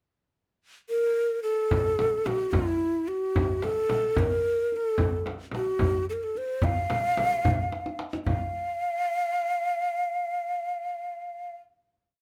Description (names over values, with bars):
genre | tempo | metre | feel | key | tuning
Persian modal ensemble | 73 BPM (dotted quarters) | 6/8 | straight | F dastgah chahargah | A4 = 440 Hz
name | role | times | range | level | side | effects
breathy mellow ney | melody | 0.9-11.6 s | E4 to F5 | -29 LUFS | equal | none
frame drum | percussion | 1.7-8.5 s | none | -34 LUFS | equal | none
tombak | percussion | 1.7-8.5 s | none | -32 LUFS | equal | none
room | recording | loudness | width
moderate studio ambience, RT60 0.5 s | none | -27 LUFS | mono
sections
0.1-1.7 pickup bar; 1.7-8.3 A section; 8.3-11.5 final note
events
drum fill 7.7-8.3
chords
none